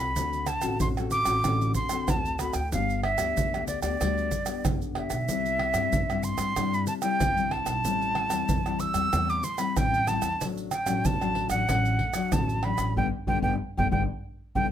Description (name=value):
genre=samba and choro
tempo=94 BPM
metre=4/4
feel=straight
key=unclear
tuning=A4 = 440 Hz
part: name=jazz flute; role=melody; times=0.0-14.7 s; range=D5 to E6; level=-28 LUFS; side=right 1 dB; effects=none
part: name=nylon-string guitar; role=accompaniment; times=0.0-14.7 s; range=G2 to A4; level=-32 LUFS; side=left 8 dB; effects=none
part: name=upright bass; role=bass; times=0.0-14.7 s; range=G1 to G2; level=-31 LUFS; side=right 1 dB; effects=none
part: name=egg shaker, surdo, pandeiro and tamborim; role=percussion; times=0.2-14.7 s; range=none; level=-30 LUFS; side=right 2 dB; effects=none
room=light reverb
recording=close, detailed microphones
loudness=-24 LUFS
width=side -10 dB against mid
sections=0.0-14.7 A section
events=band accent 13.0-14.7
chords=0.2 D7; 2.7 G; 5.3 C; 7.8 Am7; 10.4 D/A; 13.0 G